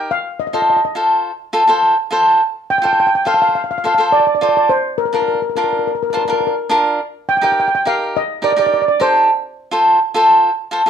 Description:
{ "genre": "calypso", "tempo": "104 BPM", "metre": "4/4", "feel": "straight", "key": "unclear", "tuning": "A4 = 442 Hz", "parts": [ { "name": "steel pan", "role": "melody", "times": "0.0-10.9 s", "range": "Bb4 to G5", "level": "-16 LUFS", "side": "equal", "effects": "none" }, { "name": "cavaquinho", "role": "accompaniment", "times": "0.0-10.9 s", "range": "D4 to C5", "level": "-14 LUFS", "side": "equal", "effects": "none" } ], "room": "wet studio reverb, RT60 0.6 s", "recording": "dark, warm production", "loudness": "-13 LUFS", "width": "side -8 dB against mid", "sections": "0.0-10.9 A section", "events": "none", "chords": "0.1 F; 4.7 Bb; 7.0 Eb; 9.3 F" }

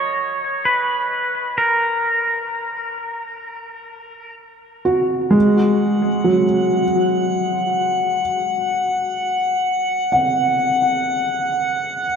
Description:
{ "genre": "ambient", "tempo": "64 BPM", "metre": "4/4", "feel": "straight", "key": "unclear", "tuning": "A4 = 439 Hz", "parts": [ { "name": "pedal steel guitar", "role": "melody", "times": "0.0-4.3 s", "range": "A#4 to C#5", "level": "-20 LUFS", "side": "equal", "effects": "ping-pong delay" }, { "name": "felt-muted upright piano", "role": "arpeggios", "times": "0.0-12.2 s", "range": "F#3 to F#5", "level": "-18 LUFS", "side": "equal", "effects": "ping-pong delay" }, { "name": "drifting glass-harmonics texture", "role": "texture", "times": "5.9-12.2 s", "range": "F#5", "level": "-20 LUFS", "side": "left 1 dB", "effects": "chorus, built-in reverb" } ], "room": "wet cathedral reverb, RT60 5.6 s", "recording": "none", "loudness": "-16 LUFS", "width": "side -6 dB against mid", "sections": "0.0-12.2 A section", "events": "none", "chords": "0.0 N.C.; 5.4 F#sus2" }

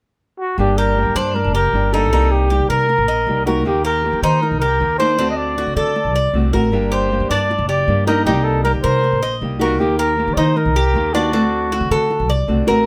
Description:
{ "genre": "latin, Cuban son and guajira", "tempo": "156 BPM", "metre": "4/4", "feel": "straight", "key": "G harmonic minor", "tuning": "A4 = 441 Hz", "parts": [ { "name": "trumpet with bucket mute", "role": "melody", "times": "0.4-12.5 s", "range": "F#4 to Eb5", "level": "-21 LUFS", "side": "equal", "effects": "none" }, { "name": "nylon-string guitar", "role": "accompaniment", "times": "0.6-12.9 s", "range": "C3 to G4", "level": "-24 LUFS", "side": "equal", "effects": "none" }, { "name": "upright bass", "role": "bass", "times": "0.6-12.8 s", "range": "F#1 to Eb3", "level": "-22 LUFS", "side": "equal", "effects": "none" }, { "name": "Cuban tres", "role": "arpeggios", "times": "0.8-12.9 s", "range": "D4 to Eb5", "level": "-24 LUFS", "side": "equal", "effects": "none" } ], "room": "light reverb", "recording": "none", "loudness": "-17 LUFS", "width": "mono", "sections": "0.6-12.9 A section", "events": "none", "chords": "0.0 N.C.; 0.6 Gm; 2.1 Cm7; 3.7 Eb; 5.2 D7; 6.7 Gm; 8.3 Cm7; 9.8 Eb; 11.3 D7" }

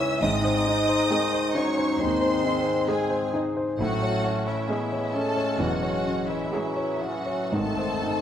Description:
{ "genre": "classical, romantic movement for piano and orchestra", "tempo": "59-68 BPM", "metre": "4/4", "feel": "rubato", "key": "unclear", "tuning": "A4 = 439 Hz", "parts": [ { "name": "clear symphonic violin section", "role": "melody", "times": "0.0-8.2 s", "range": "E5 to E6", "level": "-33 LUFS", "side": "left 1 dB", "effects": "none" }, { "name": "warm grand piano", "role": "melody", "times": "0.0-8.2 s", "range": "G#2 to C#5", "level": "-26 LUFS", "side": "left 1 dB", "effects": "none" }, { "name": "dark symphonic violin section", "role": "second line", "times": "0.0-8.2 s", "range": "E4 to E5", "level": "-32 LUFS", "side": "left 1 dB", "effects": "none" }, { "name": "warm clarinet", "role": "second line", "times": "0.0-8.2 s", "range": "B3 to D#4", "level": "-35 LUFS", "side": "left 2 dB", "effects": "none" }, { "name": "clear bassoon", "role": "accompaniment", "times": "0.0-8.2 s", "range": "D#3 to A3", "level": "-32 LUFS", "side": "right 4 dB", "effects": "none" }, { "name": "warm French horn section", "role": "sustained chords", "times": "0.0-8.2 s", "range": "E3 to E4", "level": "-32 LUFS", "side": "left 2 dB", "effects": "none" }, { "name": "clear symphonic double bass section", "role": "bass", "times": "0.2-8.2 s", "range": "E1 to D#2", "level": "-36 LUFS", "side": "right 4 dB", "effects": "none" }, { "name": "rich symphonic cello section", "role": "bass", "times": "0.2-8.2 s", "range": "D#2 to A2", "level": "-36 LUFS", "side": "right 3 dB", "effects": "none" }, { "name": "warm studio viola section", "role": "accompaniment", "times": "1.1-7.3 s", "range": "G#3 to C#4", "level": "-36 LUFS", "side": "right 2 dB", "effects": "none" }, { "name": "timpani", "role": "percussion", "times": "7.5-8.2 s", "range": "G#2", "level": "-41 LUFS", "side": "right 2 dB", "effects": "none" } ], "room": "moderate scoring stage reverb, RT60 1.5 s", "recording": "faint mains hum", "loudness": "-23 LUFS", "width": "side -9 dB against mid", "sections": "0.0-8.2 A section", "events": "timpani fill 7.5-8.2", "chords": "0.2 G#; 3.8 Amaj7; 7.5 G#" }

